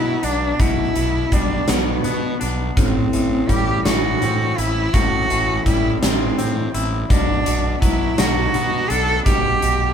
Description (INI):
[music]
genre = post-rock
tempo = 55 BPM (dotted quarters)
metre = 6/8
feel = straight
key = A dorian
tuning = A4 = 440 Hz
[part]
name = rich cello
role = melody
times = 0.0-9.9 s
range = B3 to A4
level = -21 LUFS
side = right 1 dB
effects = none
[part]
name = twangy electric guitar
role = arpeggios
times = 0.0-9.9 s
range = A2 to E4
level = -26 LUFS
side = left 3 dB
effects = none
[part]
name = fuzz fingered electric bass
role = bass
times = 0.0-9.9 s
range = A1 to B2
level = -24 LUFS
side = equal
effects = overdrive
[part]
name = huge arena drum kit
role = drums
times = 0.2-9.8 s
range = hi-hat, kick drum, snare drum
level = -21 LUFS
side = equal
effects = none
[sound]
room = wet small room ambience, RT60 0.5 s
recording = band playing live in one room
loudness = -16 LUFS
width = side -8 dB against mid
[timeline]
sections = 0.0-9.9 A section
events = none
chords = 0.0 Bm; 0.6 G/B; 2.8 Am7; 7.1 Bm; 9.3 G/B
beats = | 0.60 1.68 | 2.77 3.85 | 4.94 6.02 | 7.10 8.19 | 9.27